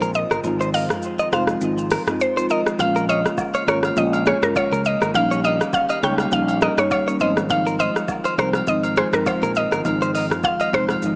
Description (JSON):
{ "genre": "afrobeats", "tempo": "102 BPM", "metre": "4/4", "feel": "swing 55% on 16ths", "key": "unclear", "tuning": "A4 = 439 Hz", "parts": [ { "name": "mallet-like synth pluck", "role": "melody", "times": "0.0-11.2 s", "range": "Bb4 to G5", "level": "-22 LUFS", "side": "equal", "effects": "chorus, dub echo" }, { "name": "hollow soft pad", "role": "sustained chords", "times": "0.0-11.2 s", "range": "Db3 to G4", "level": "-32 LUFS", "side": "equal", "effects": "none" }, { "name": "direct-recorded clean electric guitar", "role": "riff", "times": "0.0-10.8 s", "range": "Ab4 to Eb5", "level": "-26 LUFS", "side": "equal", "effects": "dub echo" }, { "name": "fretless electric bass", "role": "bass", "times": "0.0-11.2 s", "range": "F1 to Db2", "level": "-26 LUFS", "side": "equal", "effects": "none" }, { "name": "afro-pop drum kit", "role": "drums", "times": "0.0-11.2 s", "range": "hi-hat, kick drum, rim click, shaker, toms", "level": "-25 LUFS", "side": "equal", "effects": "overdrive" }, { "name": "marimba with soft mallets", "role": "accompaniment", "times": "0.4-11.2 s", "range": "F3 to F4", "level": "-24 LUFS", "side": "equal", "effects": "dub echo" }, { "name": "agogo bells and woodblock", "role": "percussion", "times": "2.8-11.0 s", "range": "none", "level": "-27 LUFS", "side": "equal", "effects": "dub echo" } ], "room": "light reverb", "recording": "echo-heavy mix, small speaker sound", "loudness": "-17 LUFS", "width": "side -33 dB against mid", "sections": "0.0-11.2 A section", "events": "kick muted 0.4-2.8", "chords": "0.0 Ab6; 2.8 Bbm7; 5.1 Eb7/Bb; 7.2 Ab6" }